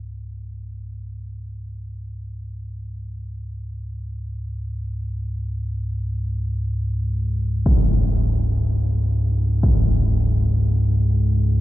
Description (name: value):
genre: dark ambient drone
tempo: free time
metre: none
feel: none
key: unclear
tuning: A4 = 441 Hz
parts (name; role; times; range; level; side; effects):
- deep rumbling drone; drone; 0.0-11.6 s; C#2 to G#2; -22 LUFS; equal; built-in reverb
- impact; percussion; 7.7-9.8 s; none; -22 LUFS; equal; low-pass filter on sfx
room: little or no reverb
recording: dark, warm production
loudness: -19 LUFS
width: side -16 dB against mid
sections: 0.0-11.6 A section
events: fade-in on synth drone 0.0-11.6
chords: 0.0 C#5